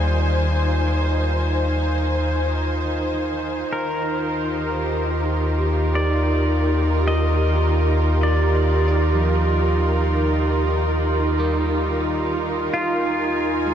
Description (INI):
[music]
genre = ambient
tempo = 53 BPM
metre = 4/4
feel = straight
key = Eb major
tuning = A4 = 440 Hz
[part]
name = rich studio string section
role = sustained chords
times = 0.0-13.7 s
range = Eb3 to Ab5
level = -22 LUFS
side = right 1 dB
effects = none
[part]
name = twelve-string electric guitar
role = arpeggios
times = 0.0-13.7 s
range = F3 to D5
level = -33 LUFS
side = equal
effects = ping-pong delay
[part]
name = warm sub bass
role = bass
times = 0.0-13.7 s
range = Eb2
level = -21 LUFS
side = equal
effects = none
[part]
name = pedal steel guitar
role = melody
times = 3.7-13.7 s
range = F4 to Eb5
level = -27 LUFS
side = left 1 dB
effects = ping-pong delay
[sound]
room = moderate huge ambient reverb, RT60 7.0 s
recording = dark, warm production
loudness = -18 LUFS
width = side -9 dB against mid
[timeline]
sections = 0.0-13.7 A section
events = fade-in on pedal steel guitar 0.0-13.7; fade-out on clean electric guitar 0.0-13.7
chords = 0.0 Fm/Eb; 3.7 Ebmaj7; 12.7 Fm/Eb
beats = 0.29 1.43 2.56 | 3.69 4.82 5.95 7.09 | 8.22 9.35 10.48 11.62 | 12.75